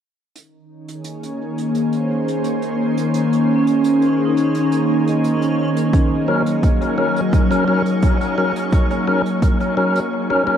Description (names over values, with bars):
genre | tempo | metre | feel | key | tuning
ambient dub | 86 BPM | 4/4 | straight | Bb minor | A4 = 440 Hz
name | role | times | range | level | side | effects
soft additive organ-like pad | sustained chords | 0.9-10.1 s | Eb3 to Db5 | -19 LUFS | left 1 dB | ensemble chorus, built-in reverb
hi-hat | drums | 0.4-10.1 s | none | -41 LUFS | right 4 dB | dub echo
backwards swelling texture | texture | 1.7-10.1 s | Db4 | -27 LUFS | right 3 dB | built-in reverb
vibraphone with hard mallets | arpeggios | 3.6-10.6 s | Db4 to F6 | -23 LUFS | right 1 dB | low-pass filter, dub echo
electronic kick drum | drums | 5.9-9.6 s | none | -16 LUFS | equal | overdrive
tonewheel organ | stabs | 6.3-10.6 s | Gb3 to Bb4 | -19 LUFS | left 1 dB | overdrive, fast rotary speaker, dub echo
room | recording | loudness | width
wet echo chamber reverb, RT60 2.4 s | none | -15 LUFS | side -9 dB against mid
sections
0.4-10.6 A section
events
none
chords
0.4 Bbm11; 5.9 Ab9sus4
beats
| 0.35 1.05 1.75 2.45 | 3.14 3.84 4.54 5.24 | 5.93 6.63 7.33 8.03 | 8.72 9.42 10.12